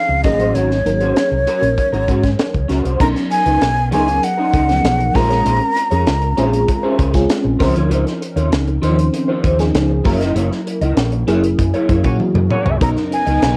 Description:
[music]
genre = polished 1980s jazz-funk pop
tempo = 98 BPM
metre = 4/4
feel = straight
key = unclear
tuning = A4 = 439 Hz
[part]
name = breathy mellow silver concert flute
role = melody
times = 0.0-7.0, 12.8-13.6 s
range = Db5 to Bb5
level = -20 LUFS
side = equal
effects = cassette tape, plate reverb
[part]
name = FM electric piano with soft pad layer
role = accompaniment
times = 0.0-13.6 s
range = Eb3 to C5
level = -22 LUFS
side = equal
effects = tremolo, analog chorus, plate reverb
[part]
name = electric guitar through a small old amp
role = riff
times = 0.1-13.5 s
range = Db4 to Eb5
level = -23 LUFS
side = equal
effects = ensemble chorus
[part]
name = fingered electric bass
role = bass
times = 0.1-13.6 s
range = Gb1 to Bb2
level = -21 LUFS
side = equal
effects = none
[part]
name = tight funk drum kit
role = drums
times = 0.2-13.6 s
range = crash cymbal, hi-hat, kick drum, snare drum, toms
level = -22 LUFS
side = equal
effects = cassette tape
[part]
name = mellow horn section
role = second line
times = 12.0-12.8 s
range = Bb3 to Db5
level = -24 LUFS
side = equal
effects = none
[part]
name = warm symphonic string section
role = sustained chords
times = 12.8-13.6 s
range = Db3 to Bb4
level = -26 LUFS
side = equal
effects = none
[sound]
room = moderate booth ambience, RT60 0.2 s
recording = home recording on cassette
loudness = -16 LUFS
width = mono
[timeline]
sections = 0.0-3.0 A section; 3.0-13.6 B section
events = band accent 10.4-12.8; drum fill 12.2-12.8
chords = 0.2 Ab9sus4; 3.0 Cbmaj9; 5.2 Bbm9; 7.6 Dbmaj13; 10.1 Gb7; 12.8 Cbmaj9

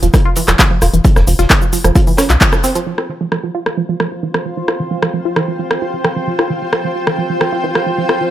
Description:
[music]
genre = driving peak-time techno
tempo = 132 BPM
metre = 4/4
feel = straight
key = unclear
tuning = A4 = 442 Hz
[part]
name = tight sequenced synth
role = riff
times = 0.0-8.3 s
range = E3 to F4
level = -19 LUFS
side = right 2 dB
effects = chorus, tube saturation, sidechain pumping, digital delay
[part]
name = tight sequencer bass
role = bass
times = 0.0-2.4 s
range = F1 to C2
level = -13 LUFS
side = equal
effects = sidechain pumping
[part]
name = crunchy breakbeat drum kit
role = drums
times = 0.0-2.9 s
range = hi-hat, snare drum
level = -28 LUFS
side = equal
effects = high-pass filter on hats, high-pass filter on snare, high-pass filter on room
[part]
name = techno drum kit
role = drums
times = 0.0-8.2 s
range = handclaps, hi-hat, rim click, shaker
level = -16 LUFS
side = equal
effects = none
[part]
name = electronic kick drum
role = drums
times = 0.1-2.5 s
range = none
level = -12 LUFS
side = equal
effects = none
[part]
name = granular cloud pad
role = texture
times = 3.8-8.3 s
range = F4 to G5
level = -19 LUFS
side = equal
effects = built-in reverb, sidechain pumping
[sound]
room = moderate stone room reverb, RT60 1.2 s, digital ambience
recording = none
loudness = -12 LUFS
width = side -12 dB against mid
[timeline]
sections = 0.0-2.9 A section; 2.9-8.3 B section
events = band accent 2.4; filter sweep on synth arpeggio sound 2.9-8.3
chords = 0.0 F5

